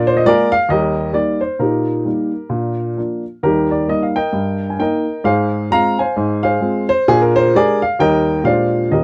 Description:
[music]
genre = jazz, stride piano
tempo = 132 BPM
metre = 4/4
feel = swing 59% on 8ths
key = Eb major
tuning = A4 = 441 Hz
[part]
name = warm upright piano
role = solo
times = 0.0-9.0 s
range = Eb1 to Bb5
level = -16 LUFS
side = equal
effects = none
[sound]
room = light reverb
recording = dry, close 1970s-style studio recording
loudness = -16 LUFS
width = mono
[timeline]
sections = 0.0-9.0 A section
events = none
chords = 0.0 Bb7; 0.7 Eb; 1.6 Eb/Bb; 2.5 Bb; 3.4 Eb; 4.3 Eb/G; 5.3 Fm/Ab; 7.1 Bb6; 8.0 Eb; 8.4 Bb13

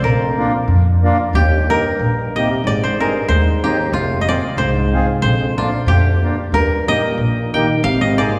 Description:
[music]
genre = alpine folk, alpine dance band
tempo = 92 BPM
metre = 2/4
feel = swing 55% on 8ths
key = Eb major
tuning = A4 = 441 Hz
[part]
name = koto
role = melody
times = 0.0-8.4 s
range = F4 to G5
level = -22 LUFS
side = equal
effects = none
[part]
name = mellow euphonium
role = second line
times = 0.0-8.4 s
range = C2 to Eb3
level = -25 LUFS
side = equal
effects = none
[part]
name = upright bass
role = bass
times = 0.0-8.2 s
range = F1 to F2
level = -20 LUFS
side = equal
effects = none
[part]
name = accordion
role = accompaniment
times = 0.4-8.3 s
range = Bb3 to Ab4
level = -25 LUFS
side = equal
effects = none
[sound]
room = wet concert hall reverb, RT60 2.3 s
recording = recorded in a church or concert hall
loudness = -16 LUFS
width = mono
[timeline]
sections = 0.0-8.4 A section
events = none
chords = 0.0 Bb; 1.3 Eb; 2.6 Ab; 3.9 Fm; 5.2 Bb; 6.5 Eb; 7.8 Ab

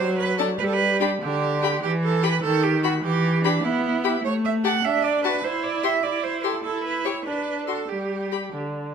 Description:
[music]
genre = quick classical-period movement for string quartet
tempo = 99 BPM (dotted quarters)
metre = 6/8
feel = rubato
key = G major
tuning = A4 = 441 Hz
[part]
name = rich viola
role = accompaniment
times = 0.0-8.9 s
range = D3 to E4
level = -24 LUFS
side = equal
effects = none
[part]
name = clear cello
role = bass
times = 0.0-8.5 s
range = D4 to F#5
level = -25 LUFS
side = right 8 dB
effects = none
[part]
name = rich violin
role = melody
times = 0.4-8.4 s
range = A5 to C#6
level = -30 LUFS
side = left 11 dB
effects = none
[part]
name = clear violin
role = second line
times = 0.4-8.4 s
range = D4 to G4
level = -30 LUFS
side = left 9 dB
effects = none
[sound]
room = moderate recital hall reverb, RT60 1.6 s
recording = close, detailed microphones, faint mains hum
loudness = -21 LUFS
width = side -7 dB against mid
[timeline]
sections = 0.0-8.9 A section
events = none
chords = 0.0 D7/F# (rootless); 0.6 G; 1.8 E5; 2.4 B7/D# (rootless); 3.0 Em; 4.2 A; 4.8 N.C.; 5.4 C/E; 6.6 A/E; 7.3 D5; 7.9 G5

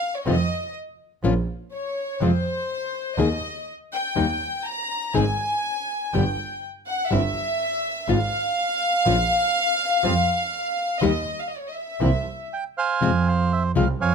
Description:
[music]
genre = tango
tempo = 122 BPM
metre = 4/4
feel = rubato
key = unclear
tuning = A4 = 441 Hz
[part]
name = warm studio violin section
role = second line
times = 0.0-12.5 s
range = C5 to Bb5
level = -24 LUFS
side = left 1 dB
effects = none
[part]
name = nylon-string guitar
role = accompaniment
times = 0.3-13.8 s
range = B2 to Ab4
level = -24 LUFS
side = left 7 dB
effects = none
[part]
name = clear double bass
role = bass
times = 0.3-14.1 s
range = G1 to F2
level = -23 LUFS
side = right 3 dB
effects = none
[part]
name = bandoneon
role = melody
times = 12.5-14.1 s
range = C5 to Ab5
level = -24 LUFS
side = right 6 dB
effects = none
[sound]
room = little or no reverb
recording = close, detailed microphones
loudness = -21 LUFS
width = side -6 dB against mid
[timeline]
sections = 0.0-13.0 A section; 13.0-14.1 B section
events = violin section solo 0.0-13.0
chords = 0.3 F7; 1.2 Bbm; 2.2 F5; 3.2 N.C.; 4.2 Eb; 5.2 Ab5; 6.1 G; 7.1 C/G; 8.1 Fm/Ab; 9.1 Bb5; 10.0 N.C.; 11.0 Eb; 12.0 C; 13.0 Fm

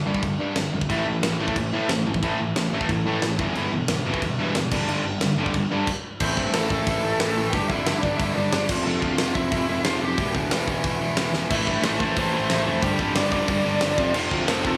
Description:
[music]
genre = punk rock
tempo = 181 BPM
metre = 4/4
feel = straight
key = A minor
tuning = A4 = 442 Hz
[part]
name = distorted electric guitar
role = riff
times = 0.0-14.8 s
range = E2 to A3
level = -28 LUFS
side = equal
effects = distortion
[part]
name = fuzz picked electric bass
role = bass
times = 0.1-14.8 s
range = E1 to A2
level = -31 LUFS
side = equal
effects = overdrive
[part]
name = big rock drum kit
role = drums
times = 0.1-14.7 s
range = crash cymbal, hi-hat, kick drum, snare drum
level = -30 LUFS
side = equal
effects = none
[part]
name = tight distorted guitar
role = riff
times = 0.9-5.9, 11.5-14.8 s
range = E2 to A3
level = -30 LUFS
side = equal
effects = distortion
[part]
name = lead guitar through a small cranked amp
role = melody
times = 6.2-14.8 s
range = C4 to D6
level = -30 LUFS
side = equal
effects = overdrive, tape echo
[sound]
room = little or no reverb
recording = studio reverb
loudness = -23 LUFS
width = mono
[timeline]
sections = 0.0-6.2 A section; 6.2-14.8 B section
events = stop 5.9-6.2; drum fill 11.3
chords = 0.0 G5; 0.9 A5; 3.4 Em/G; 4.7 G5; 6.2 Am; 7.5 G5; 8.7 F; 10.2 Em; 11.5 Am; 12.8 G5; 14.0 F

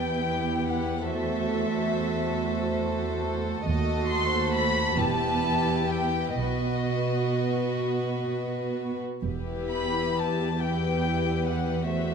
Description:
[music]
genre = classical, slow romantic movement for string orchestra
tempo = 41-48 BPM (dotted quarters)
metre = 6/8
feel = rubato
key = E minor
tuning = A4 = 440 Hz
[part]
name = warm chamber violin section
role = melody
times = 0.0-12.1 s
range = D#5 to B#5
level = -30 LUFS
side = left 3 dB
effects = none
[part]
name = rich chamber violin section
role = second line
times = 0.0-12.1 s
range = F#4 to D#5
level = -31 LUFS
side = left 3 dB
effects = none
[part]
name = warm chamber viola section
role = accompaniment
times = 0.0-12.1 s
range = A3 to F#4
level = -31 LUFS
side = right 4 dB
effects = none
[part]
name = warm studio cello section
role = bass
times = 0.0-12.1 s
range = D#2 to B2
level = -30 LUFS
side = right 3 dB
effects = none
[part]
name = warm chamber double bass section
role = bass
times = 3.7-10.1 s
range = E1 to D#2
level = -32 LUFS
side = right 3 dB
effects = none
[sound]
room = moderate scoring stage reverb, RT60 1.6 s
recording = dark, warm production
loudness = -24 LUFS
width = side -6 dB against mid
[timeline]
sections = 0.0-12.1 A section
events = none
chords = 0.0 Em; 1.1 F#m7b5/E; 3.7 D#dim7; 5.0 Em; 6.4 B; 9.2 Em

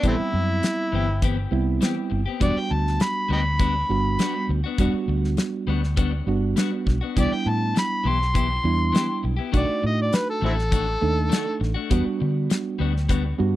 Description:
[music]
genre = straight-eighth soul blues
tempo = 101 BPM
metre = 4/4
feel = straight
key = E minor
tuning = A4 = 440 Hz
[part]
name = overdriven harmonica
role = melody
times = 0.0-11.6 s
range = A3 to C6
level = -25 LUFS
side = equal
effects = none
[part]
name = mellow reed electric piano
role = accompaniment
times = 0.0-13.6 s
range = G3 to A4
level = -26 LUFS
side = right 6 dB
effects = none
[part]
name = clean electric guitar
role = stabs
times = 0.0-13.4 s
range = D#3 to G4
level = -30 LUFS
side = left 7 dB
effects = spring reverb, slapback echo
[part]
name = vintage muted fingered electric bass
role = bass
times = 0.0-13.6 s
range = E1 to D3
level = -24 LUFS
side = equal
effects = none
[part]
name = damped 70s drum kit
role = drums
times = 0.0-13.2 s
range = hi-hat, kick drum, snare drum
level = -23 LUFS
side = equal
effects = none
[sound]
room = little or no reverb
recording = dry, close 1970s-style studio recording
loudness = -20 LUFS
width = side -15 dB against mid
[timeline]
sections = 0.0-13.6 A section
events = harmonica solo 0.0-13.6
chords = 0.0 Am9 (rootless); 2.4 Em9 (rootless); 7.2 Cmaj7; 9.5 B7#9 (rootless); 11.9 Em9 (rootless)

